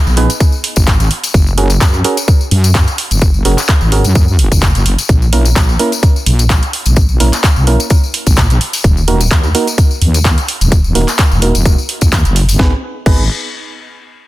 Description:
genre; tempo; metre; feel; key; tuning
bass house; 128 BPM; 4/4; swing 55% on 16ths; G# minor; A4 = 445 Hz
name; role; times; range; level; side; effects
wobble bass; bass; 0.1-13.3 s; D#1 to F#2; -12 LUFS; equal; chorus, tube saturation, sidechain pumping
tambourine; percussion; 0.1-12.6 s; none; -21 LUFS; left 6 dB; none
percussive organ stab; stabs; 0.2-13.2 s; A#3 to B4; -19 LUFS; right 3 dB; chorus, sidechain pumping, dub echo
house drum kit; drums; 0.2-13.2 s; crash cymbal, handclaps, hi-hat, snare drum; -18 LUFS; equal; overdrive
electronic kick drum; drums; 0.4-13.2 s; none; -10 LUFS; equal; none
room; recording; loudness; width
little or no reverb; dense, heavily limited modern master; -9 LUFS; side -17 dB against mid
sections
0.0-12.6 A section; 12.6-14.3 B section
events
filter sweep on wobble bass 0.0-12.6; filter sweep on synth stab 0.0-12.6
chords
0.0 G#m; 1.3 F#add9; 5.1 A#dim; 8.8 D#m; 12.6 G#m

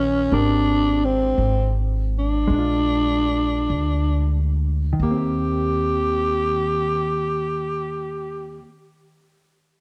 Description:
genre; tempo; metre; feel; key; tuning
jazz ballad; 44-59 BPM; 4/4; swing 69% on 8ths; Eb major; A4 = 441 Hz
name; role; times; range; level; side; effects
growling tenor saxophone; melody; 0.0-8.7 s; C4 to G4; -24 LUFS; equal; none
hollow-body jazz guitar; accompaniment; 0.0-8.8 s; Eb3 to C5; -30 LUFS; equal; none
upright bass; bass; 0.0-8.6 s; Ab1 to Eb2; -26 LUFS; equal; none
room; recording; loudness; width
light reverb; dark, warm production; -21 LUFS; mono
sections
0.3-5.0 A section; 5.0-9.8 B section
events
slowing down 0.0-5.0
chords
0.3 Abmaj9; 2.5 Bb7; 5.0 Eb6

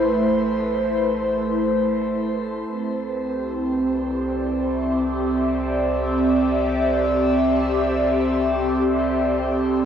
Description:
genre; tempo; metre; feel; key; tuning
ambient; free time; none; none; unclear; A4 = 438 Hz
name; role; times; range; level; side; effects
airy breathy pad; sustained chords; 0.0-9.9 s; A3 to E5; -19 LUFS; equal; chorus, phaser, cassette tape, shimmer reverb
warm sub bass; bass; 0.0-9.9 s; A1 to C2; -33 LUFS; left 1 dB; none
glass harmonica; texture; 0.0-9.9 s; A4 to A5; -39 LUFS; left 4 dB; none
room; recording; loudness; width
wet spring reverb, RT60 1.7 s, small room ambience; home recording on cassette; -19 LUFS; side -8 dB against mid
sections
0.0-9.9 A section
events
fade-in on sub bass 0.0-9.9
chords
0.0 Am; 2.7 C

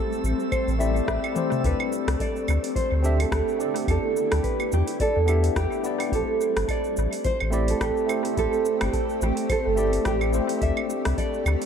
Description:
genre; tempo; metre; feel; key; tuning
sunset chillout; 107 BPM; 4/4; swing 56% on 16ths; A minor; A4 = 440 Hz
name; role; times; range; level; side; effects
tine electric piano; accompaniment; 0.0-11.7 s; A3 to E5; -29 LUFS; moving between left 7 dB and right 7 dB; auto-pan, analog delay
shimmering ambient pad; sustained chords; 0.0-11.7 s; D3 to G4; -33 LUFS; left 1 dB; chorus, built-in reverb
mellow electric guitar; arpeggios; 0.0-11.4 s; G4 to E5; -32 LUFS; left 3 dB; analog delay
drifting glass-harmonics texture; texture; 0.0-1.6 s; A4 to A5; -40 LUFS; right 6 dB; chorus, built-in reverb
smooth R&B drum kit; drums; 0.1-11.7 s; claves, hi-hat, rim click, shaker, toms; -32 LUFS; equal; overdrive, analog delay
warm sub bass; bass; 0.2-11.6 s; G1 to E2; -24 LUFS; equal; none
electronic kick drum; drums; 0.5-11.3 s; none; -30 LUFS; equal; overdrive
nylon-string guitar; melody; 1.6-11.7 s; G4 to E5; -27 LUFS; right 4 dB; analog delay
room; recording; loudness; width
light reverb; echo-heavy mix; -22 LUFS; side -7 dB against mid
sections
0.0-1.6 A section; 1.6-11.7 B section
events
drum fill 1.4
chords
0.0 Am7; 1.6 D7sus4; 3.9 Em7; 6.1 Am7; 10.6 D7sus4

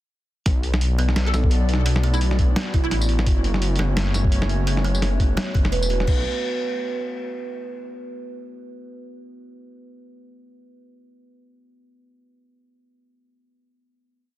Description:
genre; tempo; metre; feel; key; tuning
half-time drum and bass; 171 BPM; 4/4; swing 57% on 16ths, half-time; B minor; A4 = 441 Hz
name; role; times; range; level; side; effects
dark analog pad; sustained chords; 0.9-6.2 s; A3 to D5; -32 LUFS; left 1 dB; chorus, vintage 12-bit sampler grit, sidechain pumping
dark detuned saw bass; bass; 0.5-6.2 s; E1 to B1; -21 LUFS; equal; none
boom bap sampler-style drum kit; drums; 0.5-6.2 s; crash cymbal, hi-hat, snare drum, tambourine; -27 LUFS; equal; soft clipping on snare
electronic kick drum; drums; 0.5-6.2 s; none; -20 LUFS; equal; none
kalimba; arpeggios; 1.0-6.2 s; A3 to B4; -30 LUFS; right 3 dB; dub echo
hollow square pluck; melody; 1.3-3.0 s; E4 to A4; -33 LUFS; equal; ensemble chorus, ping-pong delay
room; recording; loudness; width
digital ambience; dense, heavily limited modern master; -19 LUFS; side -15 dB against mid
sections
0.5-6.1 drop; 6.1-7.5 final chord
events
drop 0.5-6.1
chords
0.5 Bm; 3.3 F#m; 6.1 Bm

